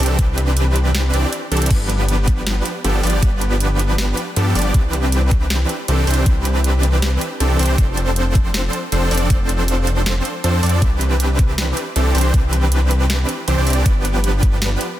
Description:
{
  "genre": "future bass",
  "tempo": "158 BPM",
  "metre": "4/4",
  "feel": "swing 54% on 16ths, half-time",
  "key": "C major",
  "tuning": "A4 = 440 Hz",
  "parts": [
    { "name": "supersaw chords", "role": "riff", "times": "0.0-14.8 s", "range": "E3 to D5", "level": "-20 LUFS", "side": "right 1 dB", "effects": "sidechain pumping, tape echo" },
    { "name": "wide detuned saw bass", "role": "bass", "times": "0.0-14.8 s", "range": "F1 to G2", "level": "-18 LUFS", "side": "equal", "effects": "chorus, sidechain pumping" },
    { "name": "trap drum kit", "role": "drums", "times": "0.0-14.9 s", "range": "crash cymbal, hi-hat, snare drum", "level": "-24 LUFS", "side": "right 1 dB", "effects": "none" },
    { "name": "electronic kick drum", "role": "drums", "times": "0.2-14.5 s", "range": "none", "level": "-16 LUFS", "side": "equal", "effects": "none" }
  ],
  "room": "little or no reverb",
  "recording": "dense, heavily limited modern master",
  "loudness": "-15 LUFS",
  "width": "side -13 dB against mid",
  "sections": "0.0-1.7 A section; 1.7-15.0 A section",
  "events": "drop 0.0-1.7, 1.7-15.0; drum fill 1.5; kick drops out 13.1-13.9",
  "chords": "0.0 Cmaj9; 1.7 G7; 4.7 Cmaj9; 7.8 F6; 10.8 Cmaj9; 13.9 G7"
}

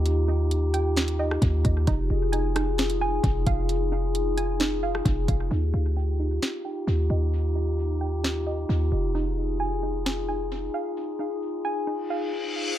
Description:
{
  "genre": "hip hop, atmospheric cloud-rap",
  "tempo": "132 BPM",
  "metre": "4/4",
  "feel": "half-time",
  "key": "F minor",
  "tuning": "A4 = 439 Hz",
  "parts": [
    { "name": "glass harmonica", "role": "sustained chords", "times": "0.0-12.7 s", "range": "Eb4 to Ab4", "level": "-29 LUFS", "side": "left 2 dB", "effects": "sidechain pumping, low-pass filter" },
    { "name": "soft round pluck", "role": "arpeggios", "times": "0.0-12.8 s", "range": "Eb4 to Ab5", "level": "-33 LUFS", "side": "right 4 dB", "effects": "chorus, low-pass filter, tape echo" },
    { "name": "warm 808-style bass", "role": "bass", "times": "0.0-10.7 s", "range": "F1 to Eb2", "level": "-25 LUFS", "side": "equal", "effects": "none" },
    { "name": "smooth R&B drum kit", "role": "drums", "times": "0.1-10.2 s", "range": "hi-hat, kick drum, rim click, snare drum", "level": "-27 LUFS", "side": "equal", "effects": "tape echo" },
    { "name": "reverse cymbal", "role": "sound effects", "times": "12.1-12.8 s", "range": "none", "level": "-31 LUFS", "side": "left 4 dB", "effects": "none" }
  ],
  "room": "light reverb",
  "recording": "echo-heavy mix",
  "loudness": "-23 LUFS",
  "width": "side -12 dB against mid",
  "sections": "0.0-5.5 A section; 5.5-12.8 B section",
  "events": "filter sweep 5.5-12.8; drums muted 11.9-12.8; reverse cymbal 12.1-12.8",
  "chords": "0.0 Ebadd9; 1.9 Fm7; 5.5 Ebadd9; 9.1 Fm7"
}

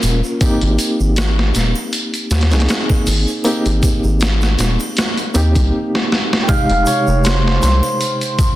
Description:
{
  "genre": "trip hop",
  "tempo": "79 BPM",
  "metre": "4/4",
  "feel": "swing 55% on 16ths",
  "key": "unclear",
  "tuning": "A4 = 441 Hz",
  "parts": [
    { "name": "reed electric piano", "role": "accompaniment", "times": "0.0-8.6 s", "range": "C3 to Bb4", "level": "-20 LUFS", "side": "equal", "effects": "tremolo, vintage 12-bit sampler grit, tape echo" },
    { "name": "round analog bass", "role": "bass", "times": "0.0-7.8 s", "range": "Eb1 to Eb2", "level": "-15 LUFS", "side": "equal", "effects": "none" },
    { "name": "boom bap sampler-style drum kit", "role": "drums", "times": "0.0-8.6 s", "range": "hi-hat, kick drum, snare drum", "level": "-18 LUFS", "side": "equal", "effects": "vintage 12-bit sampler grit" },
    { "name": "egg shaker and triangle", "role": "percussion", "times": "0.0-8.6 s", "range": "none", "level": "-30 LUFS", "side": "right 2 dB", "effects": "none" },
    { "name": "cimbalom", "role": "melody", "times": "6.4-8.6 s", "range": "C5 to G5", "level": "-18 LUFS", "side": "right 1 dB", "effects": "tape echo" }
  ],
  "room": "digital ambience",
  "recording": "dense, heavily limited modern master, vinyl crackle",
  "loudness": "-13 LUFS",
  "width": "side -15 dB against mid",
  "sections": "0.0-6.5 A section; 6.5-8.6 B section",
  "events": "drum fill 5.9-6.5",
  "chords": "0.4 Abmaj7; 6.5 Fm7"
}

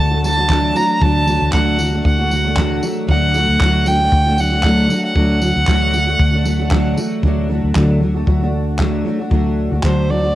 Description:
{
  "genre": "acoustic pop",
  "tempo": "116 BPM",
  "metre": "4/4",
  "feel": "swing 55% on 16ths",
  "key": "unclear",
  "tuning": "A4 = 441 Hz",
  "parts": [
    { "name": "warm violin", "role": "melody", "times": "0.0-10.3 s", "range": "C5 to Bb5", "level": "-18 LUFS", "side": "right 1 dB", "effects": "cassette tape, tape echo" },
    { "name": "fingerpicked steel-string acoustic guitar", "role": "accompaniment", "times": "0.0-10.3 s", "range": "D3 to F#4", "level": "-18 LUFS", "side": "equal", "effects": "double-tracked left and right, cassette tape" },
    { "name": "vintage muted fingered electric bass", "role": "bass", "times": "0.0-10.3 s", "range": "D2", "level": "-19 LUFS", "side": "equal", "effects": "none" },
    { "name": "compact cocktail drum kit", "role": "drums", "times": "0.2-10.0 s", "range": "handclaps, kick drum, tambourine", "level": "-19 LUFS", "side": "equal", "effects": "cassette tape" }
  ],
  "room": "light reverb",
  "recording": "home recording on cassette",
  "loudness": "-13 LUFS",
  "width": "side -14 dB against mid",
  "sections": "0.0-7.2 A section; 7.2-9.3 B section; 9.3-10.3 C section",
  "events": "none",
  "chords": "0.0 D"
}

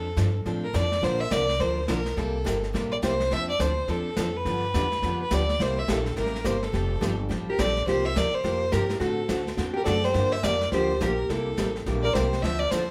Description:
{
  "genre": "country, western swing",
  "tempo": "211 BPM",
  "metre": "4/4",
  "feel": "swing 62% on 8ths",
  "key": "unclear",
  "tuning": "A4 = 439 Hz",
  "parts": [
    { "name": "clear fiddle", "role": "melody", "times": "0.0-12.9 s", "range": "A4 to E5", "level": "-30 LUFS", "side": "equal", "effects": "none" },
    { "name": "picked steel-string acoustic guitar", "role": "accompaniment", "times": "0.0-12.8 s", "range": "C3 to Bb4", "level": "-33 LUFS", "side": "equal", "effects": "none" },
    { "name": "upright bass", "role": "bass", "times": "0.0-12.9 s", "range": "F1 to A2", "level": "-32 LUFS", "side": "equal", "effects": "none" },
    { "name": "jazz brush drum kit", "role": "drums", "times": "0.2-12.9 s", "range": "brushed snare drum, hi-hat, kick drum, snare drum", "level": "-35 LUFS", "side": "equal", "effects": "none" },
    { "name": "vintage hollow-body jazz guitar", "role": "second line", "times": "7.5-12.9 s", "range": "E4 to C5", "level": "-32 LUFS", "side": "equal", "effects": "none" }
  ],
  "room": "moderate large studio reverb, RT60 0.8 s",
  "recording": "band playing live in one room",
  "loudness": "-26 LUFS",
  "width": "mono",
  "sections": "0.0-12.9 A section",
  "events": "none",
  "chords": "0.0 Dm7/F; 1.0 Bb; 2.2 C7; 3.3 F6; 4.5 G7; 5.6 C7; 6.7 Fadd9; 7.9 C7sus4; 9.0 D7; 10.1 Gm7; 11.3 C7"
}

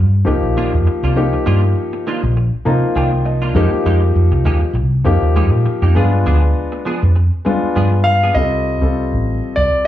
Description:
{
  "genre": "jazz",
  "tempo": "100 BPM",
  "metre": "4/4",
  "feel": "swing 55% on 16ths",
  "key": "C minor",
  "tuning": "A4 = 440 Hz",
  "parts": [
    { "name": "woody fretless electric bass", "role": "bass", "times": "0.0-9.8 s", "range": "A1 to G3", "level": "-14 LUFS", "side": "equal", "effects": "ensemble chorus" },
    { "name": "warm grand piano", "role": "accompaniment", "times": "0.2-9.8 s", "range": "F3 to Bb5", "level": "-19 LUFS", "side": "left 3 dB", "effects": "plate reverb, slapback echo" },
    { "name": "clean electric guitar", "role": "stabs", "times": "0.3-8.4 s", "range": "Eb3 to Ab4", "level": "-24 LUFS", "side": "right 4 dB", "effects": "ensemble chorus, plate reverb, slapback echo" },
    { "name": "bright concert grand piano", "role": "melody", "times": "8.0-9.9 s", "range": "D5 to F5", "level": "-17 LUFS", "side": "equal", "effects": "slapback echo, plate reverb" }
  ],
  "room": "light reverb",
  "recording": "live gig heard through the venue's PA, club ambience",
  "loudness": "-13 LUFS",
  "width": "side -12 dB against mid",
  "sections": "0.0-8.4 A section; 8.4-9.9 B section",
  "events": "grand piano fill 2.4-3.6",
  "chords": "0.0 Cm11; 3.6 Fm11; 6.0 G7b9; 8.4 Cm6"
}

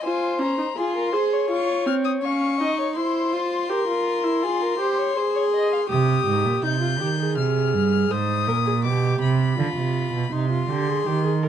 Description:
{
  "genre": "classical, baroque-style fugue for string quartet",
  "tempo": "82 BPM",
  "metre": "4/4",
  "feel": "straight",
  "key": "F minor",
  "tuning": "A4 = 440 Hz",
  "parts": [
    { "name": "warm violin", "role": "melody", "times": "0.0-11.5 s", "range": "Ab5 to G6", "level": "-28 LUFS", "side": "left 11 dB", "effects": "none" },
    { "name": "dark violin", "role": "second line", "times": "0.0-5.8 s", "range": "Ab4 to F5", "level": "-26 LUFS", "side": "left 3 dB", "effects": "none" },
    { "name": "rich viola", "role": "accompaniment", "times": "0.0-11.5 s", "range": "C4 to C5", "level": "-24 LUFS", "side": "right 1 dB", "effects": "none" },
    { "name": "rich cello", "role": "bass", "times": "5.9-11.5 s", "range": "G2 to Eb3", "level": "-22 LUFS", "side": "right 5 dB", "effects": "none" }
  ],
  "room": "light reverb",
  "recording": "dark, warm production",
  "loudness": "-20 LUFS",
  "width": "side -9 dB against mid",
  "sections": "0.0-11.5 A section",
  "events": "none",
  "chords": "0.0 Fm; 1.5 Dbmaj9/C; 3.0 C7/E; 4.4 Fm; 5.9 Cm; 7.4 Fm; 8.8 G7/B; 10.3 Cm"
}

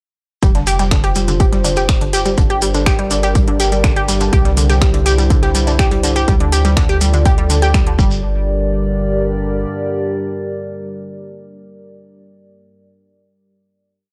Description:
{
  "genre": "melodic techno",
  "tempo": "123 BPM",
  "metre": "4/4",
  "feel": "straight",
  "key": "G dorian",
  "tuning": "A4 = 439 Hz",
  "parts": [
    { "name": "dark analog pad", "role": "sustained chords", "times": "0.8-12.0 s", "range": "G3 to D5", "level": "-25 LUFS", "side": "equal", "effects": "chorus, phaser, sidechain pumping" },
    { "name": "analog pluck", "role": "arpeggios", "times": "0.4-8.4 s", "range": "D3 to G5", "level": "-21 LUFS", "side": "equal", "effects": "chorus, cassette tape, sidechain pumping, tape echo" },
    { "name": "tight sequencer bass", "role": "bass", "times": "0.4-9.7 s", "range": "F1 to D2", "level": "-20 LUFS", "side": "equal", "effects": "tube saturation, sidechain pumping" },
    { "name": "analog drone", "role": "drone", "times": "1.8-12.0 s", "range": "G2 to D3", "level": "-30 LUFS", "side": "equal", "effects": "chorus, sidechain pumping" },
    { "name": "breakbeat sampler-style drum kit", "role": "drums", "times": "0.4-7.9 s", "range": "hi-hat, snare drum, tambourine", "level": "-37 LUFS", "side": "equal", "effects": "none" },
    { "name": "electronic kick drum", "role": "drums", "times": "0.4-8.1 s", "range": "none", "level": "-17 LUFS", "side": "equal", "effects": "small room ambience" },
    { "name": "house drum kit", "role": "drums", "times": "0.4-8.0 s", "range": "finger snaps, hi-hat", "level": "-26 LUFS", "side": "equal", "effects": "small room ambience" },
    { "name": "shekere", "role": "percussion", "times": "0.4-8.2 s", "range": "none", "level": "-28 LUFS", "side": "equal", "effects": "none" }
  ],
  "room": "little or no reverb",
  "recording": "dry, gritty hardware recording",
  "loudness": "-15 LUFS",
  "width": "mono",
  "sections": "0.4-8.2 drop; 8.2-12.1 final hit",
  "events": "drop 0.4-8.2",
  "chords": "0.4 Fsus2; 2.4 Gm; 4.3 C; 6.3 Dm; 8.0 Gm"
}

